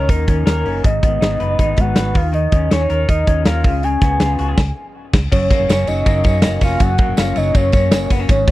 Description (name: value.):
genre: jangly indie pop.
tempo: 161 BPM.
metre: 4/4.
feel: straight.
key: unclear.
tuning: A4 = 440 Hz.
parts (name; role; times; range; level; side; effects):
soft octave-layered synth lead; melody; 0.0-8.5 s; A#4 to G#5; -20 LUFS; equal; chorus, tremolo.
electric guitar through a small old amp; arpeggios; 0.0-8.5 s; F#2 to B4; -23 LUFS; left 3 dB; wide subtle chorus.
hollow-body short-scale fingered electric bass; bass; 0.0-8.4 s; E#1 to F#2; -19 LUFS; equal; none.
big rock drum kit; drums; 0.1-8.5 s; crash cymbal, hi-hat, kick drum, ride cymbal, snare drum; -15 LUFS; equal; none.
tambourine; percussion; 5.5-8.4 s; none; -36 LUFS; right 6 dB; none.
room: little or no reverb.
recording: dry, close 1970s-style studio recording.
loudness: -13 LUFS.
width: side -16 dB against mid.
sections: 0.0-5.3 A section; 5.3-8.5 B section.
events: band accent 4.6-5.3.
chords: 0.0 D#m7; 0.8 G#m7; 2.1 D#5; 3.6 C#7; 5.3 F#.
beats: 0.09 0.47 | 0.84 1.21 1.59 1.96 | 2.34 2.71 3.08 3.46 | 3.83 4.20 4.58 4.95 | 5.32 5.69 6.06 6.43 | 6.81 7.18 7.55 7.92 | 8.29.